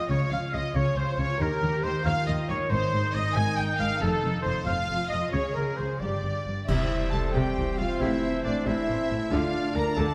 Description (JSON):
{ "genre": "cinematic, heroic adventure film score", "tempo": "92 BPM (dotted quarters)", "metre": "6/8", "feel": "straight", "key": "C mixolydian from 6.7 s", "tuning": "A4 = 439 Hz", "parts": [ { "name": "warm symphonic violin section", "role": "melody", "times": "0.0-10.1 s", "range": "A4 to Bb5", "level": "-40 LUFS", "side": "equal", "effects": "none" }, { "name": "warm oboe", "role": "second line", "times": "0.0-10.1 s", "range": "D4 to Ab5", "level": "-36 LUFS", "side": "equal", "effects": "none" }, { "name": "warm symphonic violin section", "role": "second line", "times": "0.0-10.1 s", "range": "A4 to Bb5", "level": "-39 LUFS", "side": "equal", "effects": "none" }, { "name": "rich symphonic viola section", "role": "accompaniment", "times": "0.0-10.1 s", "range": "C3 to Ab4", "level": "-36 LUFS", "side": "equal", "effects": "none" }, { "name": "concert harp", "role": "arpeggios", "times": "0.0-10.1 s", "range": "F2 to Bb5", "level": "-38 LUFS", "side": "equal", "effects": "none" }, { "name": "clear trumpet section", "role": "stabs", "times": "0.0-10.1 s", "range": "A4 to Ab5", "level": "-36 LUFS", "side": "equal", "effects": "none" }, { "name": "dark symphonic cello section", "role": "bass", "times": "0.1-10.1 s", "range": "D2 to Eb3", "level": "-34 LUFS", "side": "equal", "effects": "none" }, { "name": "dark symphonic double bass section", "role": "bass", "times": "0.1-10.1 s", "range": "F1 to Eb2", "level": "-35 LUFS", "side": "equal", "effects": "none" }, { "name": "silver concert flute", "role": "second line", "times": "6.7-10.1 s", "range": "D5 to Bb5", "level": "-39 LUFS", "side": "equal", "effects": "none" }, { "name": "dark French horn section", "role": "sustained chords", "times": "6.7-10.1 s", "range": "D4 to Bb4", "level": "-34 LUFS", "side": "equal", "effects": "none" }, { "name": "warm trombone section", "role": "sustained chords", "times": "6.7-10.1 s", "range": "D3 to A3", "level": "-39 LUFS", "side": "equal", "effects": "none" }, { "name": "clash cymbals and concert bass drum", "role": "percussion", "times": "6.7-7.5 s", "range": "none", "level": "-36 LUFS", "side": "equal", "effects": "none" } ], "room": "wet recital hall reverb, RT60 1.6 s", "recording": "none", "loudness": "-27 LUFS", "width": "mono", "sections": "0.0-6.7 A section; 6.7-10.1 B section", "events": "band accent 6.7-7.1", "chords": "0.1 Db; 1.4 Eb; 2.7 Abadd9; 4.0 F; 5.3 Db; 6.0 G7; 6.7 C; 8.0 Am; 9.3 Dm" }